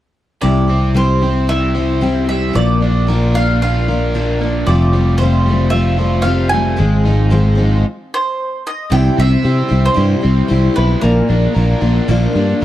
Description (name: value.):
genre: rock.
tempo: 113 BPM.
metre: 4/4.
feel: straight.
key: C major.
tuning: A4 = 440 Hz.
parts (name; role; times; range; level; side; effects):
bowl-back mandolin; melody; 0.4-12.6 s; Bb4 to Ab5; -21 LUFS; right 2 dB; none.
picked steel-string acoustic guitar; accompaniment; 0.4-12.6 s; F2 to G4; -18 LUFS; left 3 dB; none.
overdriven electric guitar; riff; 0.4-12.6 s; Bb2 to C5; -20 LUFS; right 1 dB; none.
fingered electric bass; bass; 0.4-12.6 s; F1 to C3; -14 LUFS; equal; none.
room: small room ambience.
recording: dry, close 1970s-style studio recording.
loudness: -12 LUFS.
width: side -13 dB against mid.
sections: 0.4-8.9 A section; 8.9-12.6 B section.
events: stop 7.8-8.9.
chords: 0.4 C; 2.5 Bb; 4.7 Fadd9; 6.8 Ab6; 8.9 C; 11.0 Bb.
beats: | 0.43 0.96 1.49 2.02 | 2.55 3.08 3.61 4.14 | 4.67 5.20 5.73 6.26 | 6.79 7.32 7.85 8.38 | 8.91 9.44 9.97 10.50 | 11.03 11.56 12.09 12.62.